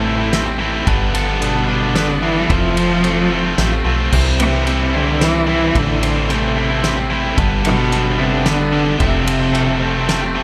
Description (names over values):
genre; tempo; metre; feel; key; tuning
post-rock; 111 BPM; 3/4; straight; unclear; A4 = 441 Hz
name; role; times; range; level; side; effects
warm cello; melody; 0.0-10.1 s; A2 to F3; -21 LUFS; equal; tape echo
electric guitar at the edge of break-up; arpeggios; 0.0-10.4 s; G4 to E5; -31 LUFS; equal; none
twangy electric guitar; arpeggios; 0.0-10.4 s; F2 to E4; -29 LUFS; equal; none
distorted electric guitar; riff; 0.0-10.4 s; F2 to F4; -25 LUFS; equal; distortion
tight distorted guitar; riff; 0.0-10.4 s; F2 to F4; -25 LUFS; equal; distortion
metallic FM bass; bass; 0.0-10.4 s; F1 to C2; -24 LUFS; equal; none
loose indie drum kit; drums; 0.3-10.2 s; crash cymbal, kick drum, ride cymbal, snare drum; -25 LUFS; equal; none
room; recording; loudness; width
small room ambience; none; -16 LUFS; mono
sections
0.0-10.4 A section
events
none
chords
0.0 Am7; 0.9 G7; 2.5 Fmaj7; 4.1 Cmaj7; 5.7 Am7; 7.4 G7; 9.0 Fmaj7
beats
0.33 | 0.87 1.41 1.96 | 2.50 3.04 3.58 | 4.12 4.67 5.21 | 5.75 6.29 6.83 | 7.37 7.92 8.46 | 9.00 9.54 10.09